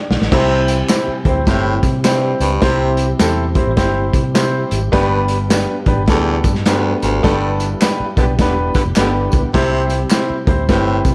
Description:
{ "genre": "uptempo 1960s-style soul", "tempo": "104 BPM", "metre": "4/4", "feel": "swing 62% on 8ths", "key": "C major", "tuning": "A4 = 440 Hz", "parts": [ { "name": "warm baby grand piano", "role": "accompaniment", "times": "0.0-11.1 s", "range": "G2 to D5", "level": "-20 LUFS", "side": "equal", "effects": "none" }, { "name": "vintage muted fingered electric bass", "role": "bass", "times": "0.1-11.1 s", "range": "E1 to C3", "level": "-22 LUFS", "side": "equal", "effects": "none" }, { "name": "crunchy breakbeat drum kit", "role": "drums", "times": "0.1-11.1 s", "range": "crash cymbal, hi-hat, kick drum, snare drum", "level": "-20 LUFS", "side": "equal", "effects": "none" }, { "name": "mellow tonewheel organ", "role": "sustained chords", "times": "0.3-11.1 s", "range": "G3 to G4", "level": "-30 LUFS", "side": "equal", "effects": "none" }, { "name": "growling baritone saxophone", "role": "riff", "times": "0.3-11.0 s", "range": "D2 to C3", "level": "-24 LUFS", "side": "equal", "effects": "none" }, { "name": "tambourine and handclaps", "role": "percussion", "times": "0.3-11.1 s", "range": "none", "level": "-30 LUFS", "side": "equal", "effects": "none" }, { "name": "mellow horn section", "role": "second line", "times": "8.2-9.5 s", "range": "D3 to G4", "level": "-26 LUFS", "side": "equal", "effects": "none" } ], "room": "light reverb, small room reverb", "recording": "dark, warm production", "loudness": "-16 LUFS", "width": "mono", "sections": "0.3-11.1 A section", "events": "drum fill 0.0-0.3; band accent 7.2-9.5", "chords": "0.3 C; 4.9 G; 9.5 C" }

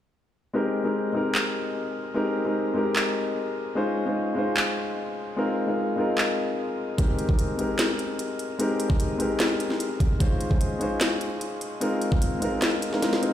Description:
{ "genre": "future bass", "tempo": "149 BPM", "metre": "4/4", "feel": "half-time", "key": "Ab major", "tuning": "A4 = 440 Hz", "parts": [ { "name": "warm grand piano", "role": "accompaniment", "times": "0.5-13.3 s", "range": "Ab3 to C5", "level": "-25 LUFS", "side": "left 1 dB", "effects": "sidechain pumping, digital delay" }, { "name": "trap drum kit", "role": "drums", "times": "1.3-13.3 s", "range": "handclaps, hi-hat, snare drum", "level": "-28 LUFS", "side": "equal", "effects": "studio ambience" }, { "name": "electronic kick drum", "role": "drums", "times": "7.0-12.2 s", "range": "none", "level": "-23 LUFS", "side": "equal", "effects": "overdrive, studio ambience" } ], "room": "light reverb", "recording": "played on a big sound system in a bare room, stone room reverb", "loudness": "-23 LUFS", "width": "side -11 dB against mid", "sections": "0.5-13.3 A section", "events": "kick drops out 13.0-13.3; drum fill 13.0-13.3", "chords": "0.5 Abmaj7; 3.8 Dbmaj9; 5.4 Bb7sus4; 7.0 Abmaj7; 10.2 Dbmaj9; 11.8 Bb7sus4" }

